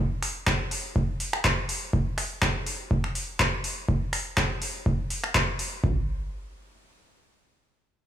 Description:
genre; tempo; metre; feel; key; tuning
acid house; 123 BPM; 4/4; swing 54% on 16ths; none; none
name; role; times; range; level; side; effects
booming analog drum machine; drums; 0.2-5.7 s; finger snaps, handclaps, hi-hat; -27 LUFS; equal; overdrive
booming analog drum machine; drums; 0.5-6.0 s; kick drum, toms; -27 LUFS; equal; overdrive
room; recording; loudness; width
little or no reverb; small room ambience; -25 LUFS; side -11 dB against mid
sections
0.0-5.8 A section; 5.8-8.1 B section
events
none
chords
none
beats
0.47 0.96 1.45 | 1.93 2.42 2.91 3.40 | 3.88 4.37 4.86 5.35 | 5.84

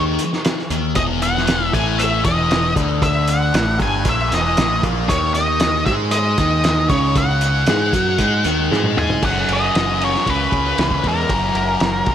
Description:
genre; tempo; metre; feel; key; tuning
psychedelic rock; 116 BPM; 4/4; straight; unclear; A4 = 442 Hz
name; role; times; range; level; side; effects
octave-fuzz lead guitar; melody; 0.0-12.1 s; A#4 to G#5; -20 LUFS; left 1 dB; distortion, tape echo
thick fuzz guitar; riff; 0.0-12.1 s; E2 to G#4; -20 LUFS; left 1 dB; distortion, phaser, tape echo
growling picked electric bass; bass; 0.0-12.1 s; E1 to G#2; -22 LUFS; equal; overdrive
cloth-damped thuddy drum kit; drums; 0.2-12.1 s; crash cymbal, hi-hat, kick drum, ride cymbal, snare drum, toms; -21 LUFS; equal; none
room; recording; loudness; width
light reverb, studio reverb; echo-heavy mix; -15 LUFS; side -10 dB against mid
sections
0.0-9.2 A section; 9.2-12.1 B section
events
drum fill 8.7-9.2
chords
0.0 N.C.; 1.0 Em11; 5.1 D#m7; 9.2 F#5; 10.3 C#m; 11.3 F#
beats
0.44 | 0.96 1.48 1.99 2.51 | 3.02 3.54 4.06 4.58 | 5.09 5.61 6.12 6.64 | 7.16 7.67 8.19 8.71 | 9.23 9.74 10.26 10.78 | 11.30 11.82

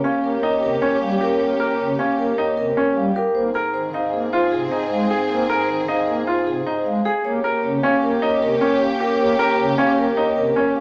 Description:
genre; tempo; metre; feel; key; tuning
classical, minimalist pattern music; 154 BPM; 5/4; straight; unclear; A4 = 440 Hz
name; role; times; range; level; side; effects
vibraphone with medium mallets; melody; 0.0-10.8 s; Ab4 to F5; -25 LUFS; equal; none
warm studio violin section; sustained chords; 0.0-10.8 s; C4 to Ab4; -29 LUFS; equal; none
clear baby grand piano; arpeggios; 0.0-10.8 s; Db4 to Bb4; -24 LUFS; equal; none
warm bass clarinet; bass; 0.0-10.8 s; Eb2 to Ab2; -30 LUFS; equal; none
pipe organ, principal; accompaniment; 0.2-10.5 s; C3 to Bb3; -30 LUFS; equal; none
room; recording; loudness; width
wet large studio reverb, RT60 1.0 s; heard from further back in the room, small speaker sound; -20 LUFS; mono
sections
0.0-10.8 A section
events
none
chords
0.0 Eb9; 3.4 Ab69; 7.2 Eb9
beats
0.23 0.62 1.01 | 1.40 1.79 2.18 2.57 2.96 | 3.35 3.74 4.13 4.52 4.91 | 5.30 5.69 6.08 6.47 6.86 | 7.25 7.64 8.03 8.42 8.81 | 9.20 9.59 9.97 10.37 10.75

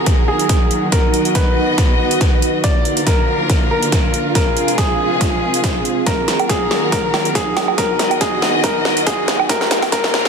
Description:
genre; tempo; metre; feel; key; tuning
heavy wobble dubstep; 140 BPM; 4/4; swing 54% on 16ths, half-time; Eb harmonic minor; A4 = 440 Hz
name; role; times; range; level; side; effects
warm concert grand piano; melody; 0.0-10.3 s; Ab4 to D5; -20 LUFS; left 1 dB; tape echo
rich studio string section; sustained chords; 0.0-10.3 s; C3 to D#5; -22 LUFS; left 1 dB; sidechain pumping
ethereal airy pad; texture; 0.0-10.3 s; C4 to Gb5; -22 LUFS; right 2 dB; ensemble chorus, built-in reverb, sidechain pumping
dubstep drum kit; drums; 0.1-10.3 s; hi-hat, snare drum, woodblock; -20 LUFS; right 1 dB; overdrive, high-pass filter on hats, high-pass filter on snare, high-pass filter on toms, high-pass filter on perc, high-pass filter on room
electronic kick drum; drums; 0.1-10.0 s; none; -18 LUFS; equal; none
riser; sound effects; 8.7-10.3 s; none; -31 LUFS; left 2 dB; none
room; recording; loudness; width
moderate lush hall reverb, RT60 1.8 s, digital ambience; dense, heavily limited modern master, high-pass filter; -14 LUFS; side -6 dB against mid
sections
0.0-10.3 A section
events
build-up 0.0-10.3; drum fill 0.0-10.3; filter sweep 0.0-10.3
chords
0.0 Ebm; 0.9 B; 2.6 Bb; 4.4 Fm; 6.1 Ebm; 7.8 B; 9.5 Bb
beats
0.07 0.49 | 0.92 1.35 1.78 2.21 | 2.64 3.07 3.50 3.92 | 4.35 4.78 5.21 5.64 | 6.07 6.50 6.92 7.35 | 7.78 8.21 8.64 9.07 | 9.49 9.92

